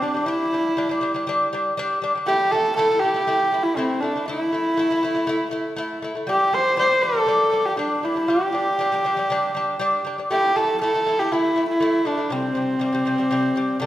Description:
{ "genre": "mongolian traditional, Mongolian folk", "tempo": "120 BPM", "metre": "4/4", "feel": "straight", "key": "unclear", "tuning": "A4 = 439 Hz", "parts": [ { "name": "rich horsehead fiddle", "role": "melody", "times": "0.0-13.9 s", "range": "C4 to C5", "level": "-20 LUFS", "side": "equal", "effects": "slapback echo" }, { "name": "lute", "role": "arpeggios", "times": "0.0-13.9 s", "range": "C3 to E4", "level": "-25 LUFS", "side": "left 1 dB", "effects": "none" } ], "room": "wet recital hall reverb, RT60 1.7 s", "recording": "none", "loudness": "-19 LUFS", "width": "side -14 dB against mid", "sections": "0.0-13.9 A section", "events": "none", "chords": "0.0 G5; 2.3 A5; 6.3 G5; 10.3 A5; 12.3 C5" }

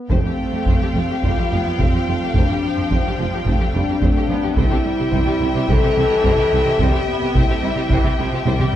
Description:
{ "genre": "cinematic, epic orchestral film score", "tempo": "108 BPM", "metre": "4/4", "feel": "straight", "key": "unclear", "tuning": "A4 = 436 Hz", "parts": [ { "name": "warm French horn section", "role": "sustained chords", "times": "0.0-8.2 s", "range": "C4 to A4", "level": "-22 LUFS", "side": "left 3 dB", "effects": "none" }, { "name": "warm symphonic violin section", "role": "melody", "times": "0.1-8.8 s", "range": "G5", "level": "-28 LUFS", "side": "left 6 dB", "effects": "none" }, { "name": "warm symphonic violin section", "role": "second line", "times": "0.1-8.8 s", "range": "E4 to F5", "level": "-27 LUFS", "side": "left 3 dB", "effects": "none" }, { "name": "rich studio viola section", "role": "accompaniment", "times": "0.1-8.8 s", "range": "E3 to C4", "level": "-28 LUFS", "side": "right 2 dB", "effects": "none" }, { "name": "bright trombone section", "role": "sustained chords", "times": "0.1-8.8 s", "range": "G3 to C4", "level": "-32 LUFS", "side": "right 5 dB", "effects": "none" }, { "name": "mellow tuba", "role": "bass", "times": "0.1-8.5 s", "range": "F1 to C2", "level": "-28 LUFS", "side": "right 3 dB", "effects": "none" }, { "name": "rich symphonic cello section", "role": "bass", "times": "0.1-8.8 s", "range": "F2 to C3", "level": "-25 LUFS", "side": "right 2 dB", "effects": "none" }, { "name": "warm studio double bass section", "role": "bass", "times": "0.1-8.5 s", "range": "F1 to C2", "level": "-25 LUFS", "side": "right 2 dB", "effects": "none" }, { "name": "taiko ensemble", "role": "drums", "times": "0.1-8.8 s", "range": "none", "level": "-21 LUFS", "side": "equal", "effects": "none" } ], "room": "moderate scoring stage reverb, RT60 1.7 s", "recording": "dark, warm production", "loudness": "-16 LUFS", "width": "side -11 dB against mid", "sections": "0.1-8.8 A section", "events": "drum fill 8.5", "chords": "0.1 Fsus2; 4.6 C" }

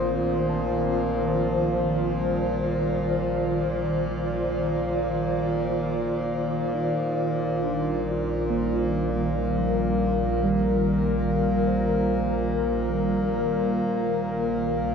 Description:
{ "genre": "ambient", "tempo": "70 BPM", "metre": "4/4", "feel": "straight", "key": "unclear", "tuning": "A4 = 440 Hz", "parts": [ { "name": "ethereal airy pad", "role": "sustained chords", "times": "0.0-14.9 s", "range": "Db3 to D5", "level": "-25 LUFS", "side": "equal", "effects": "ensemble chorus, built-in reverb, shimmer reverb" }, { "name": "muted felt-like synth keys", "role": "arpeggios", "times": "0.0-14.9 s", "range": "F3 to Eb6", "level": "-31 LUFS", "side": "right 1 dB", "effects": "chorus, tape echo, shimmer reverb" }, { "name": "warm sub bass", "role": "bass", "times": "0.0-14.9 s", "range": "Bb1", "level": "-34 LUFS", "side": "equal", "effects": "none" }, { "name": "pedal harmonium", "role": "drone", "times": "0.0-14.9 s", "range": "Bb2", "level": "-29 LUFS", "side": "equal", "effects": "none" } ], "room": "wet huge ambient reverb, RT60 7.0 s", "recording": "dark, warm production", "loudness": "-22 LUFS", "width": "side -6 dB against mid", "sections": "0.0-14.9 A section", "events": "fade-in on synth keys 0.0-14.9; fade-in on sub bass 0.0-14.9", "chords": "0.0 F7/Bb; 7.0 Ebadd9/Bb; 13.9 Gb6/Bb (rootless)" }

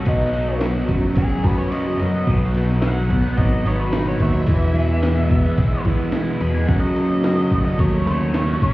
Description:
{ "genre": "indie rock", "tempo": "109 BPM", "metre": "4/4", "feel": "straight", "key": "B mixolydian", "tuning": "A4 = 437 Hz", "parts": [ { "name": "octave-fuzz lead guitar", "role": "melody", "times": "0.0-8.7 s", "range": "D#4 to B5", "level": "-28 LUFS", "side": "left 1 dB", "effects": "distortion, plate reverb, analog delay" }, { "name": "crunchy overdriven guitar", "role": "riff", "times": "0.0-8.7 s", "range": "E2 to G#4", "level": "-25 LUFS", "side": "left 3 dB", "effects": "phaser" }, { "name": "crunchy overdriven guitar", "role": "riff", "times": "0.0-8.7 s", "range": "F#2 to E4", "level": "-25 LUFS", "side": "right 4 dB", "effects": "ensemble chorus" }, { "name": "modern bright picked electric bass", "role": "bass", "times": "0.0-8.7 s", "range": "F#1 to E3", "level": "-20 LUFS", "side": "equal", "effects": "none" }, { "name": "breakbeat sampler-style drum kit", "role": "drums", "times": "0.1-8.7 s", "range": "crash cymbal, kick drum, ride cymbal, snare drum", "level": "-23 LUFS", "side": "equal", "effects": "none" } ], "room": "little or no reverb", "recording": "heard muffled through a wall, stone room reverb, EQ", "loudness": "-17 LUFS", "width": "side -18 dB against mid", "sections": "0.0-8.7 A section", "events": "lead electric guitar solo 0.0-8.7; break 1.7-2.3", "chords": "0.1 B; 0.9 F#sus4; 2.3 B; 4.5 E; 6.7 F#m" }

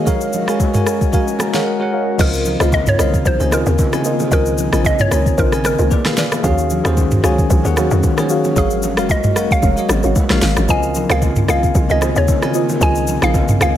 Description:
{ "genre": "amapiano", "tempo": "113 BPM", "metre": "4/4", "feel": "swing 55% on 16ths", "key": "Db major", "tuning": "A4 = 440 Hz", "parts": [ { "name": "bell-like tine electric piano", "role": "accompaniment", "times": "0.0-13.8 s", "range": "Db3 to Bb5", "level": "-20 LUFS", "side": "left 2 dB", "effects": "medium stereo tremolo" }, { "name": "airy breathy pad", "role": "sustained chords", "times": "0.0-13.8 s", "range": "Eb3 to Eb5", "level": "-25 LUFS", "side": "left 1 dB", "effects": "chorus" }, { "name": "deep mellow chord stab", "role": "stabs", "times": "0.0-13.7 s", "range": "F4 to F5", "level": "-23 LUFS", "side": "equal", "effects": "chorus, ping-pong delay" }, { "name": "smooth R&B drum kit", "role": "drums", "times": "0.1-13.7 s", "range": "crash cymbal, hi-hat, kick drum, rim click, shaker, snare drum, toms", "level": "-18 LUFS", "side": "equal", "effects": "none" }, { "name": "congas and bongos", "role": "percussion", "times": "0.1-13.5 s", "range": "none", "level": "-27 LUFS", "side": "right 2 dB", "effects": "none" }, { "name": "mallet-like synth pluck", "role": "melody", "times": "2.2-13.8 s", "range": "Ab4 to Ab5", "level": "-20 LUFS", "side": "equal", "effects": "chorus, ping-pong delay" }, { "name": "hollow log drum bass", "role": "bass", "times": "2.2-13.8 s", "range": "F1 to F2", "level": "-19 LUFS", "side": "equal", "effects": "none" } ], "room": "light reverb, digital ambience", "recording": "none", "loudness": "-13 LUFS", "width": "side -11 dB against mid", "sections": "0.0-2.2 A section; 2.2-13.8 B section", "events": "tine electric piano fill 1.1-2.2; drop 2.2-13.8", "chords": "0.1 Ab13sus4; 2.2 Dbmaj13; 5.9 Bb7b9; 6.4 Ebm11; 8.6 Ab13sus4; 10.7 Dbmaj13" }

